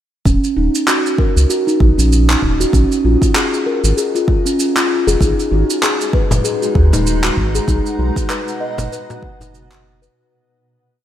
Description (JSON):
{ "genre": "organic downtempo", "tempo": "97 BPM", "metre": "4/4", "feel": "swing 57% on 16ths", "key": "Eb minor", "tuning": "A4 = 440 Hz", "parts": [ { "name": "steel tongue drum", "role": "arpeggios", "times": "0.3-10.1 s", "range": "Db4 to D#5", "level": "-17 LUFS", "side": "left 1 dB", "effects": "tape echo, shimmer reverb, slapback echo" }, { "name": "round analog bass", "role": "bass", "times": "0.3-10.1 s", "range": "Eb1 to Eb2", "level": "-14 LUFS", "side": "equal", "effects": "none" }, { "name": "electronic kick drum", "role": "drums", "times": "0.3-9.4 s", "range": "none", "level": "-16 LUFS", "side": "equal", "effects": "none" }, { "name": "electronic shaker and handclaps", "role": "drums", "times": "0.3-10.1 s", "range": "none", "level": "-20 LUFS", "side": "right 1 dB", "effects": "none" }, { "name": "granular cloud pad", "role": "sustained chords", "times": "6.0-10.2 s", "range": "B2 to Bb5", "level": "-27 LUFS", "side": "equal", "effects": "built-in reverb, sidechain pumping, shimmer reverb" }, { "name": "frame drum", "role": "percussion", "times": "6.3-9.5 s", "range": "none", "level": "-23 LUFS", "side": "left 1 dB", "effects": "none" } ], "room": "moderate concert hall reverb, RT60 2.1 s", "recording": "big arena sound", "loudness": "-13 LUFS", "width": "side -11 dB against mid", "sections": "0.3-10.2 groove", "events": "fade-out 6.9-10.2", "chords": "0.3 Ebm7; 2.7 Bbm7; 5.2 Abm7; 7.7 B" }